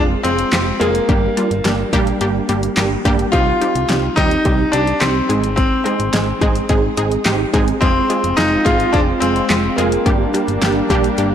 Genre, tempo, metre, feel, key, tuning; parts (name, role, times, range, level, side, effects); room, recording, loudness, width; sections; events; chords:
synth-pop; 107 BPM; 4/4; straight; F dorian; A4 = 440 Hz
wide unison pluck; accompaniment; 0.0-11.3 s; G3 to Ab4; -18 LUFS; right 2 dB; auto-pan
solid FM bass; bass; 0.0-11.3 s; F1 to Eb2; -22 LUFS; equal; transformer saturation
clear baby grand piano; melody; 0.2-11.3 s; Bb3 to F4; -19 LUFS; left 2 dB; tape echo
pop drum kit; drums; 0.2-11.3 s; handclaps, hi-hat, kick drum, snare drum; -19 LUFS; equal
warm analog pad; sustained chords; 7.8-11.3 s; G3 to F4; -22 LUFS; equal; chorus
moderate plate reverb, RT60 2.0 s, digital ambience; blown-out, overdriven recording, overdrive, lossy compression artefacts; -14 LUFS; side -9 dB against mid
0.0-11.3 A section
0.0 Fm; 1.1 Gm; 3.3 Cm; 5.3 Ab; 7.8 Fm; 10.1 Gm